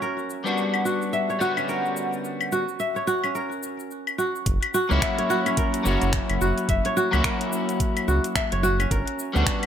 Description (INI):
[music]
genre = organic downtempo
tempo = 108 BPM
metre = 4/4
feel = swing 59% on 16ths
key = F# phrygian dominant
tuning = A4 = 440 Hz
[part]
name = kora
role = arpeggios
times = 0.0-9.7 s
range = C#4 to E5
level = -26 LUFS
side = right 1 dB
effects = ping-pong delay
[part]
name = afro-pop drum kit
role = drums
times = 0.0-9.7 s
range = claves, finger snaps, hi-hat, shaker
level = -29 LUFS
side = left 2 dB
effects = none
[part]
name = electric guitar at the edge of break-up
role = accompaniment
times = 0.4-9.7 s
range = D3 to F#4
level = -26 LUFS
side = left 2 dB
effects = analog chorus, sidechain pumping, ping-pong delay
[part]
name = round analog bass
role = bass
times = 4.5-9.4 s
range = F#1 to D2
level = -23 LUFS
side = right 1 dB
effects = sidechain pumping
[part]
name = electronic kick drum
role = drums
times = 4.5-9.6 s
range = none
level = -27 LUFS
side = equal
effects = none
[sound]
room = light reverb, digital ambience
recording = none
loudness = -22 LUFS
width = side -9 dB against mid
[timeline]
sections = 0.0-4.5 A section; 4.5-9.7 B section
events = none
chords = 0.0 Gmaj7; 4.5 F#7; 8.9 Gmaj7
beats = | 0.02 0.58 1.13 1.69 | 2.24 2.80 3.35 3.91 | 4.47 5.02 5.58 6.13 | 6.69 7.24 7.80 8.36 | 8.91 9.47